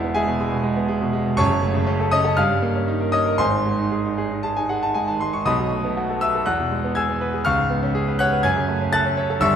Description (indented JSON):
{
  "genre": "classical, virtuoso piano study",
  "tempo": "121 BPM",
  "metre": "4/4",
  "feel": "rubato",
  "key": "unclear",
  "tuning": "A4 = 440 Hz",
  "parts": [
    { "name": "clear concert grand piano", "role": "solo", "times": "0.0-9.6 s", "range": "E1 to A6", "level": "-18 LUFS", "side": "equal", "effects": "none" }
  ],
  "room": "wet concert hall reverb, RT60 2.2 s",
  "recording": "minimal, uncompressed stereo recording",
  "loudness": "-19 LUFS",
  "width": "side -8 dB against mid",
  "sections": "0.0-9.6 A section",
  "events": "none",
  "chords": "0.0 E; 1.4 F#m; 2.4 D#7/G; 3.4 G#; 5.5 B7; 6.5 E; 7.5 C#7; 8.4 F#m"
}